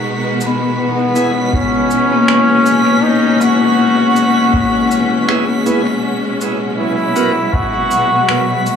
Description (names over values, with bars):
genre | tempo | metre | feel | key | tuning
ambient dub | 80 BPM | 4/4 | swing 55% on 16ths | unclear | A4 = 440 Hz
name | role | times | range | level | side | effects
clear studio string section | sustained chords | 0.0-8.8 s | B2 to A#4 | -18 LUFS | right 2 dB | none
vibraphone with medium hard mallets | arpeggios | 0.0-6.1 s | A#3 to B3 | -16 LUFS | left 6 dB | dub echo
backwards swelling texture | texture | 0.0-8.8 s | B6 | -26 LUFS | equal | built-in reverb
electronic shaker and finger snaps | drums | 0.4-8.8 s | none | -24 LUFS | right 1 dB | dub echo
brilliant trombone | melody | 0.8-8.8 s | B3 to F#4 | -16 LUFS | equal | dub echo
bright tonewheel organ | stabs | 1.2-7.3 s | B3 to A#4 | -22 LUFS | right 3 dB | overdrive, slow rotary speaker, dub echo
electronic kick drum | drums | 1.5-7.7 s | none | -20 LUFS | equal | none
room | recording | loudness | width
wet spring reverb, RT60 2.3 s | small room ambience | -11 LUFS | side -7 dB against mid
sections
0.0-8.8 A section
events
none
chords
0.0 F#9sus4; 6.0 G#m7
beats
| 0.03 0.78 1.53 2.28 | 3.03 3.78 4.53 5.28 | 6.03 6.78 7.53 8.28